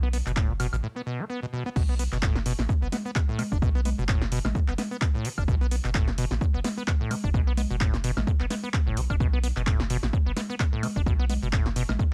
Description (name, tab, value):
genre	acid house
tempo	129 BPM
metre	4/4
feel	swing 56% on 16ths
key	B minor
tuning	A4 = 440 Hz
part	acid bass, saw	riff	0.0-12.0 s	A2 to D4	-34 LUFS	equal	analog chorus, cassette tape, sidechain pumping, analog delay
part	warm sub bass	bass	0.0-12.0 s	F#1 to B1	-31 LUFS	equal	sidechain pumping
part	punchy analog drum machine	drums	0.1-12.1 s	cabasa, congas, crash cymbal, handclaps, hi-hat, snare drum, woodblock	-34 LUFS	equal	overdrive
part	electronic kick drum	drums	0.4-12.1 s	none	-27 LUFS	equal	overdrive
room	little or no reverb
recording	dry, gritty hardware recording, cassette tape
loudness	-26 LUFS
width	mono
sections	0.0-1.8 A section; 1.8-12.1 B section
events	break 0.8-1.8; drop 1.8-12.1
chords	0.0 B7(no3)